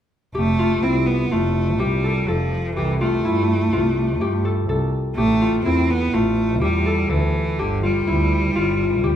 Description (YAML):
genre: contemporary instrumental, chamber music in an uneven meter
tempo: 124 BPM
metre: 5/4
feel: straight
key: F major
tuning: A4 = 441 Hz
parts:
  - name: Celtic harp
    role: arpeggios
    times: 0.3-9.2 s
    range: E4 to A4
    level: -23 LUFS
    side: left 3 dB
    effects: none
  - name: clear cello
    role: melody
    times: 0.4-9.2 s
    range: D3 to C4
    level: -22 LUFS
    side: right 2 dB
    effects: none
  - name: clear double bass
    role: bass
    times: 0.4-9.2 s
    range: F1 to G2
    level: -22 LUFS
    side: right 1 dB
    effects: none
room: moderate recital hall reverb, RT60 1.7 s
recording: minimal, uncompressed stereo recording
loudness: -18 LUFS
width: side -9 dB against mid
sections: 0.4-9.2 A section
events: none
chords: 0.4 Fmaj7; 2.8 C6; 5.2 A5; 7.6 G5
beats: | 0.35 0.83 1.32 1.80 2.28 | 2.76 3.25 3.73 4.21 4.69 | 5.18 5.66 6.14 6.62 7.11 | 7.59 8.07 8.56 9.04